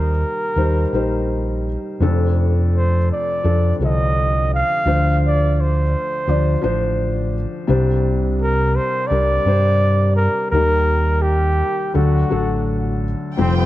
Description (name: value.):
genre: acoustic folk-pop ballad.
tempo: 84 BPM.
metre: 4/4.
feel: straight.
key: unclear.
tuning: A4 = 437 Hz.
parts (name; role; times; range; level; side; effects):
breathy flugelhorn; melody; 0.0-13.7 s; C4 to F5; -21 LUFS; right 1 dB; none.
felt-muted upright piano; accompaniment; 0.0-13.7 s; F1 to D5; -22 LUFS; left 3 dB; none.
fingered electric bass; bass; 0.0-13.7 s; F1 to G2; -18 LUFS; equal; none.
warm chamber string section; sustained chords; 13.4-13.7 s; F4 to G5; -26 LUFS; right 2 dB; none.
room: light reverb.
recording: nothing above 10.5 kHz.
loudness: -16 LUFS.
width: side -15 dB against mid.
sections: 0.0-13.4 A section.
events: none.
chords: 0.0 Eb; 2.0 F6; 4.9 Dm7; 7.7 Csus2; 10.5 Eb; 12.0 D.